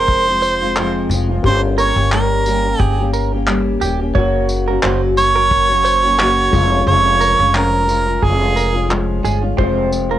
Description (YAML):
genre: acoustic pop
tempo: 88 BPM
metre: 4/4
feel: swing 55% on 16ths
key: unclear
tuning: A4 = 442 Hz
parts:
  - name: clear harmonica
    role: melody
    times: 0.0-8.9 s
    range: Ab4 to Db5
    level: -15 LUFS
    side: right 2 dB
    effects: plate reverb
  - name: dark upright piano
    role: accompaniment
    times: 0.0-10.2 s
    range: Ab3 to Db5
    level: -26 LUFS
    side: left 9 dB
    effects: cassette tape, plate reverb
  - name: nylon-string guitar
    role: accompaniment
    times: 0.0-10.2 s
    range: F2 to G4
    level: -21 LUFS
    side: left 1 dB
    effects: double-tracked left and right, cassette tape, plate reverb
  - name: direct-recorded clean electric guitar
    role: arpeggios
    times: 0.0-10.2 s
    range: G4 to Db5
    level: -22 LUFS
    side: right 8 dB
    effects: cassette tape, plate reverb
  - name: upright bass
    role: bass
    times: 0.0-10.2 s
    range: Eb1 to G1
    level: -19 LUFS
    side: equal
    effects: none
  - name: cloth-damped thuddy drum kit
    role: drums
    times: 0.1-10.1 s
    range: handclaps, kick drum, tambourine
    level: -20 LUFS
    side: equal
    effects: cassette tape
room: light reverb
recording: home recording on cassette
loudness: -13 LUFS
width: side -12 dB against mid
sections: 0.0-10.2 A section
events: none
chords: 0.0 Fm; 1.4 Gdim; 4.2 Gb; 6.5 Db/F; 9.6 Fm